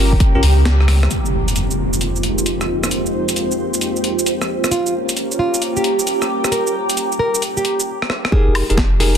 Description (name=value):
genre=UK garage, two-step garage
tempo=133 BPM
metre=4/4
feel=swing 66% on 16ths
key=F minor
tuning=A4 = 439 Hz
part: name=soft string machine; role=sustained chords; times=0.0-9.2 s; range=F2 to G4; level=-24 LUFS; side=left 1 dB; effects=ensemble chorus, vintage 12-bit sampler grit, sidechain pumping
part: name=bell-like tine electric piano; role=stabs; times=0.0-0.4, 8.3-9.2 s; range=Db4 to Bb4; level=-21 LUFS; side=left 1 dB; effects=ping-pong delay
part: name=soft dub sub bass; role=bass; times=0.0-1.1, 8.5-9.2 s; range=F1 to Db2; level=-14 LUFS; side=equal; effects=none
part: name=granular cloud pad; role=texture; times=0.0-9.2 s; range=F4 to D6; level=-22 LUFS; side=right 2 dB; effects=built-in reverb, sidechain pumping
part: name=electronic kick drum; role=drums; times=0.1-0.3, 8.3-8.9 s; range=none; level=-15 LUFS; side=equal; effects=none
part: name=breakbeat sampler-style drum kit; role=drums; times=0.2-9.2 s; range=hi-hat, rim click, shaker, snare drum, woodblock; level=-21 LUFS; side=equal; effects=none
part: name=impact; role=sound effects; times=1.1-2.9 s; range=none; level=-23 LUFS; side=equal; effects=none
part: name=nylon-string guitar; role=melody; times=4.7-9.2 s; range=F4 to Bb4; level=-21 LUFS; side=equal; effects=vintage 12-bit sampler grit, tape echo
room=light reverb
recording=dense, heavily limited modern master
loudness=-15 LUFS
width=side -8 dB against mid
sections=0.0-1.1 A section; 1.1-8.3 B section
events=kick drops out 0.7-1.1; band accent 0.7; drum fill 0.9, 8.0-8.3; impact 1.1-2.9; filter sweep on string machine 1.1-8.3; stop 7.9-8.3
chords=0.0 Gm7b5; 1.1 Fm11; 4.5 Gm7b5; 8.3 Fm11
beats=0.20 0.65 | 1.10 1.56 2.01 2.46 | 2.91 3.36 3.81 4.26 | 4.71 5.17 5.62 6.07 | 6.52 6.97 7.42 7.87 | 8.32 8.77